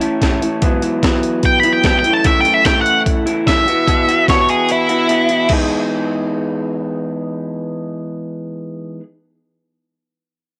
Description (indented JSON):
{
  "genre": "indie rock",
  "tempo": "148 BPM",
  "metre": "4/4",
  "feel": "straight",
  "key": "E major",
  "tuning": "A4 = 440 Hz",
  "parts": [
    { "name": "electric guitar through a small old amp", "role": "riff", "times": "0.0-9.0 s", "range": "F#2 to G#4", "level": "-20 LUFS", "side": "equal", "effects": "cassette tape" },
    { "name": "breakbeat sampler-style drum kit", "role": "drums", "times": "0.0-5.6 s", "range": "crash cymbal, hi-hat, kick drum, snare drum", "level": "-20 LUFS", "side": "equal", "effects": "cassette tape" },
    { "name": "octave-fuzz lead guitar", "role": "melody", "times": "1.5-5.5 s", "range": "E4 to B5", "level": "-17 LUFS", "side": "equal", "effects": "distortion" }
  ],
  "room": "light reverb, digital ambience",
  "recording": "home recording on cassette",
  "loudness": "-15 LUFS",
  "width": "mono",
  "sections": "0.0-5.5 A section; 5.5-8.8 B section",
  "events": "lead electric guitar solo 0.0-5.5; kick and snare drop out 4.7-5.5",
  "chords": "0.0 A; 0.6 Eadd9/G#; 2.0 F#m7; 3.7 Bsus4; 5.5 Emaj7"
}